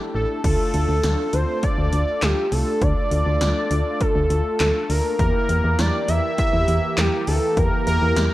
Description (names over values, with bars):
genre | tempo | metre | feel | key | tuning
synth-pop | 101 BPM | 4/4 | straight | D minor | A4 = 440 Hz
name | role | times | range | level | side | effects
mellow synth brass | accompaniment | 0.0-8.3 s | A3 to Bb4 | -28 LUFS | left 1 dB | chorus, analog delay
fat analog lead | melody | 0.1-8.3 s | G4 to E5 | -23 LUFS | equal | analog delay
solid FM bass | bass | 0.1-8.3 s | A1 to E2 | -21 LUFS | equal | none
80s electronic pad drums | drums | 0.4-8.3 s | crash cymbal, handclaps, hi-hat, kick drum, snare drum | -24 LUFS | equal | overdrive
phased analog pad | sustained chords | 5.2-8.3 s | E3 to G4 | -30 LUFS | right 2 dB | phaser, chorus
room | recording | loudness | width
light reverb, digital ambience | echo-heavy mix | -18 LUFS | side -16 dB against mid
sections
0.4-8.3 A section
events
none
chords
0.4 Dm; 5.2 Edim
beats
| 0.44 1.04 1.63 2.23 | 2.82 3.41 4.01 4.60 | 5.20 5.79 6.38 6.98 | 7.57 8.16